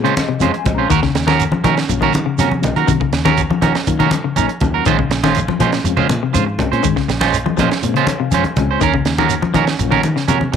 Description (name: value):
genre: afrobeat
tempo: 122 BPM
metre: 4/4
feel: straight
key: Bb minor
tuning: A4 = 440 Hz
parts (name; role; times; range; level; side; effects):
- mellow reed electric piano; accompaniment; 0.0-10.6 s; Gb3 to Bb5; -23 LUFS; left 12 dB; fast tremolo
- clean electric guitar; arpeggios; 0.0-10.3 s; C3 to F3; -19 LUFS; left 10 dB; none
- electric guitar at the edge of break-up; stabs; 0.0-10.6 s; Ab3 to C5; -18 LUFS; right 10 dB; none
- fingered electric bass; bass; 0.0-10.6 s; Bb1 to Eb3; -21 LUFS; equal; none
- tight funk drum kit; drums; 0.1-10.6 s; hi-hat, kick drum, snare drum; -23 LUFS; right 4 dB; none
- congas; percussion; 0.2-10.6 s; none; -20 LUFS; equal; none
- shekere; percussion; 0.2-10.6 s; none; -24 LUFS; right 4 dB; none
room: moderate spring reverb, RT60 1.2 s, small room reverb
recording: 1960s-style stereo with parts hard left and right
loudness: -13 LUFS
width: side -7 dB against mid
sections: 0.0-10.6 A section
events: reed electric piano fill 0.0-0.9, 7.8-8.8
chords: 0.0 Bbm9; 0.9 Ebm7; 4.9 Bbm9; 8.8 Ebm7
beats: 0.42 | 0.91 1.41 1.90 2.40 | 2.89 3.38 3.88 4.37 | 4.87 5.36 5.85 6.35 | 6.84 7.33 7.83 8.32 | 8.81 9.31 9.80 10.29